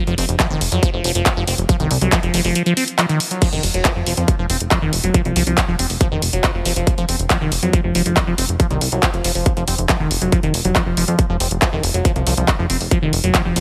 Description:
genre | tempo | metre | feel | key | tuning
psychedelic trance | 139 BPM | 4/4 | straight | unclear | A4 = 438 Hz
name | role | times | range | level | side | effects
liquid acid bass | riff | 0.0-13.6 s | Eb3 to C4 | -24 LUFS | equal | phaser, sidechain pumping, dub echo
plucky analog bass | bass | 0.1-13.6 s | F1 to F2 | -23 LUFS | equal | none
big-room dance drum kit | drums | 0.1-13.6 s | crash cymbal, handclaps, hi-hat | -23 LUFS | equal | none
electronic kick drum | drums | 0.4-13.4 s | none | -20 LUFS | equal | none
room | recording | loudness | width
light reverb, digital ambience | none | -18 LUFS | mono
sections
0.0-13.6 A section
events
none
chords
0.0 F5

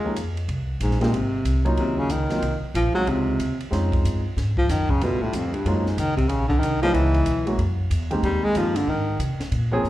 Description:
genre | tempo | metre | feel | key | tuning
jazz, small-group swing and bop | 186 BPM | 4/4 | swing 63% on 8ths | Ab major | A4 = 439 Hz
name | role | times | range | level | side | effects
breathy baritone saxophone | melody | 0.0-9.2 s | F2 to Ab3 | -24 LUFS | left 1 dB | plate reverb, slapback echo
warm baby grand piano | accompaniment | 0.0-9.8 s | Eb3 to Ab4 | -26 LUFS | right 1 dB | plate reverb, slapback echo
upright bass | bass | 0.0-9.9 s | Ab1 to C3 | -24 LUFS | equal | none
compact cocktail drum kit | drums | 0.2-9.9 s | hi-hat, kick drum, ride cymbal, snare drum | -30 LUFS | equal | none
room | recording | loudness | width
light reverb | live gig heard through the venue's PA, club reverb | -20 LUFS | side -15 dB against mid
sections
0.5-9.9 A section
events
none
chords
0.5 Abadd9; 1.8 Ebm7; 2.4 Ab69; 3.1 Dbmaj9; 4.4 Ebmadd9; 5.0 G9; 5.6 Gbmaj7; 6.9 Dbm7; 7.6 Gb9; 8.2 Abmaj9

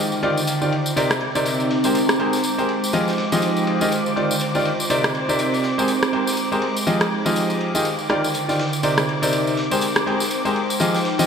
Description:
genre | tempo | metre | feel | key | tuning
piano house | 122 BPM | 4/4 | swing 58% on 16ths | unclear | A4 = 439 Hz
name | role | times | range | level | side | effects
muted studio violin section | sustained chords | 0.0-11.3 s | C5 to D6 | -28 LUFS | left 1 dB | low-pass filter
warbly tape-like pad | texture | 0.0-11.3 s | D3 to Bb5 | -24 LUFS | right 2 dB | chorus, built-in reverb
tambourine | percussion | 0.1-11.3 s | none | -29 LUFS | left 1 dB | none
clear grand piano | riff | 0.2-11.3 s | C3 to Eb5 | -21 LUFS | left 1 dB | digital delay
raw garage drum kit | drums | 0.2-11.3 s | ride cymbal, snare drum | -32 LUFS | left 1 dB | high-pass filter on cymbals, low-pass filter on cymbals, high-pass filter on snare, low-pass filter on snare, high-pass filter on room, low-pass filter on room, gated reverb
electronic rim click | drums | 1.1-10.0 s | none | -25 LUFS | equal | gated reverb
room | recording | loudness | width
wet lush hall reverb, RT60 1.9 s, studio ambience | bright 1980s-style digital production | -18 LUFS | side -6 dB against mid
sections
0.0-11.3 A section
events
filter sweep on violin section 0.0-11.3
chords
0.0 Ebmaj9; 1.0 Cm9; 1.7 Abmaj9; 2.9 Fm9; 3.9 Ebmaj9; 4.9 Cm9; 5.6 Abmaj9; 6.9 Fm9; 7.9 Ebmaj9; 8.8 Cm9; 9.6 Abmaj9

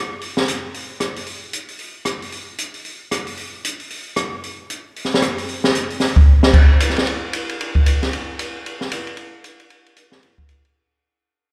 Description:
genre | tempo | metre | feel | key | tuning
jazz | 228 BPM | 4/4 | swing 59% on 8ths | none | none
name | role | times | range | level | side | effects
open jazz drum kit | drums | 0.2-10.7 s | crash cymbal, hi-hat, kick drum, ride cymbal, rim click, snare drum | -20 LUFS | equal | none
room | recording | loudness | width
light reverb | live gig heard through the venue's PA, club reverb | -20 LUFS | mono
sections
0.0-6.5 A section; 6.5-10.8 B section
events
drum fill 6.3; fade-out 6.5-10.8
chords
none

